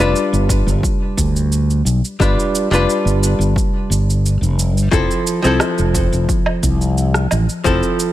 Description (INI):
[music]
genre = sunset chillout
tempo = 88 BPM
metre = 4/4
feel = straight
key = unclear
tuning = A4 = 440 Hz
[part]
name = archtop guitar, miked and amplified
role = accompaniment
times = 0.0-8.1 s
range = F3 to B4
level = -18 LUFS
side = left 1 dB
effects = auto-pan, digital delay
[part]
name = fretless electric bass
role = bass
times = 0.0-7.8 s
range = F1 to D2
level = -16 LUFS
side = equal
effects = lush chorus
[part]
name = electronic cabasa, rim click and woodblock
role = drums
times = 0.0-8.1 s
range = none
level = -23 LUFS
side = right 2 dB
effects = overdrive
[part]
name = electronic kick drum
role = drums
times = 0.5-7.8 s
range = none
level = -19 LUFS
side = equal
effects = overdrive
[sound]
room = light reverb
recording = none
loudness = -14 LUFS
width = side -14 dB against mid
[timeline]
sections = 0.0-8.1 A section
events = none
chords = 0.0 G7; 4.9 Fmaj7